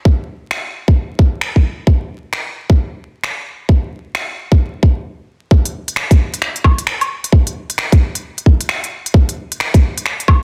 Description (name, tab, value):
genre	future garage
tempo	132 BPM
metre	4/4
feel	swing 63% on 16ths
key	none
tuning	none
part	electronic kick drum	drums	0.1-10.4 s	none	-13 LUFS	equal	overdrive
part	organic electronic drum kit	drums	0.5-10.4 s	finger snaps, hi-hat, woodblock	-22 LUFS	equal	overdrive, soft clipping on snare
room	little or no reverb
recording	dense, heavily limited modern master, vinyl crackle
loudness	-16 LUFS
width	mono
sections	0.0-5.5 A section; 5.5-10.4 B section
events	stop 5.1-5.5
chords	none